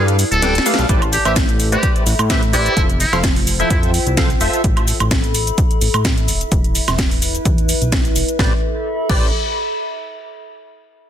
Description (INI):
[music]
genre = piano house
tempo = 128 BPM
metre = 4/4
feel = swing 54% on 16ths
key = A minor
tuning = A4 = 438 Hz
[part]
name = trumpet with metal mute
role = melody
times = 0.0-3.8 s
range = E4 to A4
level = -22 LUFS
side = equal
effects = tape echo
[part]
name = percussive organ stab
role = riff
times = 0.0-4.6, 8.4-9.3 s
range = F3 to G5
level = -21 LUFS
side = equal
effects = ensemble chorus, sidechain pumping, tape echo
[part]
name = fat analog bass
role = bass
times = 0.0-9.3 s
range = D1 to A2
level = -20 LUFS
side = equal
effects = sidechain pumping
[part]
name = warbly tape-like pad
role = texture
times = 0.0-10.2 s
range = E4 to B5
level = -24 LUFS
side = left 2 dB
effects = chorus, built-in reverb, sidechain pumping
[part]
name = house drum kit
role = drums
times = 0.1-9.2 s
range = crash cymbal, hi-hat, shaker, snare drum, woodblock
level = -20 LUFS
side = right 1 dB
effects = none
[part]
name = electronic kick drum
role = drums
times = 0.9-9.2 s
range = none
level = -18 LUFS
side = equal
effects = none
[sound]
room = little or no reverb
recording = dense, heavily limited modern master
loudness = -14 LUFS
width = side -10 dB against mid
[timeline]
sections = 0.9-8.4 A section; 8.4-10.3 B section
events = break 0.0-0.9; drum fill 0.4-0.9; filter sweep on analog synth bass 0.9-8.4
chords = 0.0 G9; 0.9 Am11; 2.8 Fmaj7; 4.6 Am9; 6.3 E5; 8.4 Am11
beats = 0.42 | 0.89 1.36 1.83 2.30 | 2.77 3.24 3.71 4.17 | 4.64 5.11 5.58 6.05 | 6.52 6.99 7.46 7.92 | 8.39 8.86 9.33 9.80